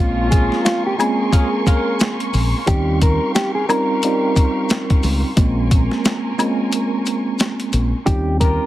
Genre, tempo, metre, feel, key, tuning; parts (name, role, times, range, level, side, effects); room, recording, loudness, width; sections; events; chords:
hip hop, boom-bap hip-hop; 89 BPM; 4/4; swing 60% on 16ths; Bb dorian; A4 = 440 Hz
mellow electric guitar; melody; 0.0-8.7 s; F4 to Bb4; -22 LUFS; equal; high-pass filter, low-pass filter, tape echo
tine electric piano; accompaniment; 0.0-8.7 s; G3 to F4; -21 LUFS; right 2 dB; overdrive, fast stereo tremolo, high-pass filter, low-pass filter
warm studio string section; sustained chords; 0.0-8.0 s; G4 to Db6; -29 LUFS; equal; high-pass filter, low-pass filter
dark saxophone section; stabs; 0.0-1.9, 8.4-8.7 s; F3 to Bb4; -26 LUFS; left 2 dB; high-pass filter, low-pass filter, tape echo
deep dub fingered electric bass; bass; 0.0-8.6 s; Bb1 to Eb2; -19 LUFS; equal
boom bap sampler-style drum kit; drums; 0.3-8.6 s; hi-hat, kick drum, snare drum; -17 LUFS; equal
maracas and woodblock; percussion; 0.3-8.6 s; -25 LUFS; left 5 dB
studio ambience; heavily compressed radio sound; -15 LUFS; side -14 dB against mid
0.0-8.1 A section
break 6.7-8.1
0.0 Bbm9; 2.7 Eb13; 5.4 Bbm9; 8.1 Eb13